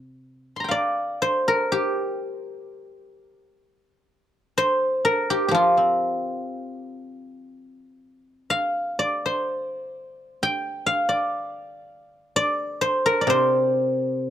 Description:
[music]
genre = chinese traditional, Chinese solo plucked strings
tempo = 62 BPM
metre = 2/4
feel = rubato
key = C shang mode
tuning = A4 = 440 Hz
[part]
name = guzheng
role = solo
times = 0.0-14.3 s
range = C3 to C6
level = -21 LUFS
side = equal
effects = none
[sound]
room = small room ambience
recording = dry, close 1970s-style studio recording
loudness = -21 LUFS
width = side -10 dB against mid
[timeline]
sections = 0.0-14.3 A section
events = none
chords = none

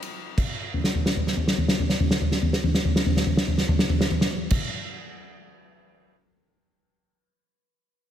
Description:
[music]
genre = folk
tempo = 56 BPM (dotted quarters)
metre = 6/8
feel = straight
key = none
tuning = none
[part]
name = unplugged drum kit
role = drums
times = 0.0-6.2 s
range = crash cymbal, kick drum, ride cymbal, snare drum, toms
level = -22 LUFS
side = equal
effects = none
[sound]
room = moderate lush hall reverb, RT60 2.8 s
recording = big arena sound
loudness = -21 LUFS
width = side -10 dB against mid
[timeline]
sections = 0.4-4.7 A section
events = drum fill 0.7-4.5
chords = none

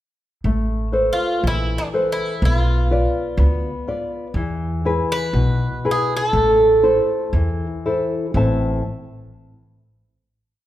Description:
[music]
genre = fado-style ballad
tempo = 60 BPM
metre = 2/4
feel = rubato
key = A harmonic minor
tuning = A4 = 439 Hz
[part]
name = upright bass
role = bass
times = 0.4-8.8 s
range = A1 to E2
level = -20 LUFS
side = equal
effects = none
[part]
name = nylon-string guitar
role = accompaniment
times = 0.5-8.8 s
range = A2 to A5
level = -22 LUFS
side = left 2 dB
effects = none
[part]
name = Irish bouzouki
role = melody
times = 1.1-7.3 s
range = D4 to B4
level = -19 LUFS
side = right 1 dB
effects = none
[sound]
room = moderate recital hall reverb, RT60 1.5 s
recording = recorded in a church or concert hall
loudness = -17 LUFS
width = side -13 dB against mid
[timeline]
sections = 0.4-8.3 A section; 8.3-10.3 final chord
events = none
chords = 0.4 Amadd9; 2.4 Bdim; 4.4 E; 6.3 Am

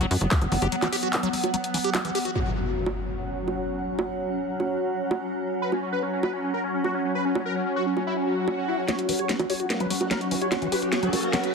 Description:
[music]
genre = psychedelic trance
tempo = 147 BPM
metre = 4/4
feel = straight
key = unclear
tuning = A4 = 441 Hz
[part]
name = swarming drone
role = sustained chords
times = 0.0-11.5 s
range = F#3 to C#4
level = -30 LUFS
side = left 1 dB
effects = built-in reverb, sidechain pumping
[part]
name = liquid acid bass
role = riff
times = 0.0-2.3, 8.9-11.4 s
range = E3 to G4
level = -30 LUFS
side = left 1 dB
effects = phaser, auto-pan, sidechain pumping, tape echo
[part]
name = tight sequencer bass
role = bass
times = 0.0-0.7 s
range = F#1 to F#2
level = -24 LUFS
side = equal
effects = tube saturation
[part]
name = drum and bass drum kit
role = drums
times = 0.0-11.5 s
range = bongos, handclaps, hi-hat, snare drum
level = -28 LUFS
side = right 2 dB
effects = overdrive
[part]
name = airy breathy pad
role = texture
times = 0.0-11.5 s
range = F#4 to F#5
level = -31 LUFS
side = right 1 dB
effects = chorus, phaser, sidechain pumping
[part]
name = impact, swell and riser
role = sound effects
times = 2.4-4.0, 8.2-11.5 s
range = none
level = -33 LUFS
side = equal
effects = none
[part]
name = wide unison lead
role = melody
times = 5.6-11.5 s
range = C#4 to C#5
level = -29 LUFS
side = equal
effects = phaser, sidechain pumping, tape echo
[part]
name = formant-sweep wobble bass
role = second line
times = 9.7-11.5 s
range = F#3 to A#3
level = -37 LUFS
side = right 4 dB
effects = chorus, sidechain pumping, high-pass filter, tape echo
[sound]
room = moderate digital room reverb, RT60 1.1 s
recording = heavily compressed radio sound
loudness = -24 LUFS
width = side -5 dB against mid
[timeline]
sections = 0.0-2.4 A section; 2.4-8.9 B section; 8.9-11.5 C section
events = break 0.7-2.4; impact 2.4-4.0; swell 8.2-8.9; build-up 8.9-11.5; drum fill 8.9-11.5; riser 8.9-11.5; filter sweep on acid bass 8.9-11.5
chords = 0.0 F#5

